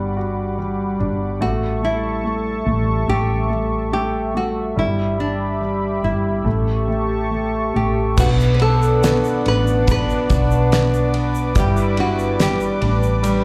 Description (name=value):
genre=pop ballad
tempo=71 BPM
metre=4/4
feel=straight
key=B minor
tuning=A4 = 440 Hz
part: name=warm concert grand piano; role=accompaniment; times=0.0-13.4 s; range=G3 to F#4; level=-26 LUFS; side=equal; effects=none
part: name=warm analog pad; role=sustained chords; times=0.0-13.4 s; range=G3 to D6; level=-28 LUFS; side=equal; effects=chorus
part: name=woody fretless electric bass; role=bass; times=0.0-13.4 s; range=G1 to B1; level=-23 LUFS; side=equal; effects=none
part: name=nylon-string guitar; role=melody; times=1.4-13.4 s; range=D4 to B4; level=-26 LUFS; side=equal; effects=none
part: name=mellow French horn section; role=second line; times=8.2-13.4 s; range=D4 to E4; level=-29 LUFS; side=equal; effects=digital delay
part: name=fingerpicked steel-string acoustic guitar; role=arpeggios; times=8.2-13.4 s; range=G2 to G4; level=-31 LUFS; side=equal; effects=none
part: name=damped 70s drum kit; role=drums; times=8.2-13.4 s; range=crash cymbal, kick drum, ride cymbal, snare drum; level=-24 LUFS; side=equal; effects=none
part: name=tube shaker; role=percussion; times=8.2-13.4 s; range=none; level=-41 LUFS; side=equal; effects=none
room=moderate club reverb, RT60 0.5 s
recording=live gig heard through the venue's PA, club reverb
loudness=-19 LUFS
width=mono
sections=0.0-8.2 A section; 8.2-13.4 B section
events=none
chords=0.0 Gmaj7; 1.4 A7; 4.8 Em7/G; 6.5 A7; 8.2 Bm; 11.6 G